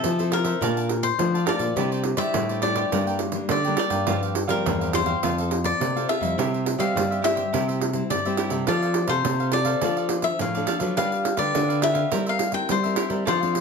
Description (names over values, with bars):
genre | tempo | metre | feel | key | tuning
samba and choro | 104 BPM | 4/4 | straight | unclear | A4 = 438 Hz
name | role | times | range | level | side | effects
cavaquinho | melody | 0.0-13.6 s | A4 to G5 | -26 LUFS | left 4 dB | plate reverb
cavaquinho | accompaniment | 0.0-13.6 s | D4 to A5 | -31 LUFS | right 6 dB | none
nylon-string guitar | accompaniment | 0.0-13.6 s | G2 to B4 | -30 LUFS | left 6 dB | none
nylon-string guitar | bass | 0.0-13.6 s | E2 to G3 | -26 LUFS | right 1 dB | none
pandeiro | percussion | 0.0-13.6 s | none | -28 LUFS | right 6 dB | none
room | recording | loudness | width
moderate studio ambience, RT60 0.5 s | none | -21 LUFS | side -5 dB against mid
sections
0.0-13.6 A section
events
none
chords
0.0 Fmaj7; 0.6 Bbmaj7; 1.8 Cadd9; 2.9 Gm; 4.1 Csus4/G; 5.2 F; 6.4 C; 8.7 F; 9.8 Dm/F; 11.0 G7; 12.1 C7/G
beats
0.04 0.62 1.19 | 1.77 2.35 2.92 3.50 | 4.08 4.65 5.23 5.80 | 6.38 6.95 7.53 8.11 | 8.68 9.26 9.83 10.40 | 10.98 11.55 12.13 12.70 | 13.27